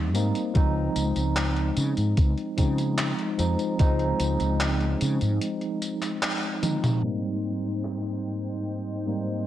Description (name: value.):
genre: vaporwave.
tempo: 74 BPM.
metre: 4/4.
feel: straight.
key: unclear.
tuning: A4 = 440 Hz.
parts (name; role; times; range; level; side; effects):
tine electric piano; accompaniment; 0.0-9.5 s; Ab2 to Eb4; -27 LUFS; equal; medium stereo tremolo, lush chorus, analog delay.
fretless electric bass; bass; 0.0-5.4 s; Db2 to Db3; -25 LUFS; equal; ensemble chorus.
gated 80s digital drum machine; drums; 0.1-9.4 s; handclaps, hi-hat, tambourine, toms; -30 LUFS; equal; gated reverb.
electronic kick drum; drums; 0.6-4.0 s; none; -21 LUFS; equal; none.
lush unison pad; sustained chords; 7.0-9.5 s; Eb4 to G5; -38 LUFS; right 1 dB; chorus.
room: light reverb.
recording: cassette tape, low-pass filter.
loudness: -23 LUFS.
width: side -12 dB against mid.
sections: 0.0-7.0 A section; 7.0-9.5 B section.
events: break 5.4-7.0; band accent 6.2-6.6; drum fill 6.6-7.0; filter sweep 7.0-9.5.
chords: 0.0 Abmaj7; 0.6 Dbmaj9; 7.0 Abmaj7.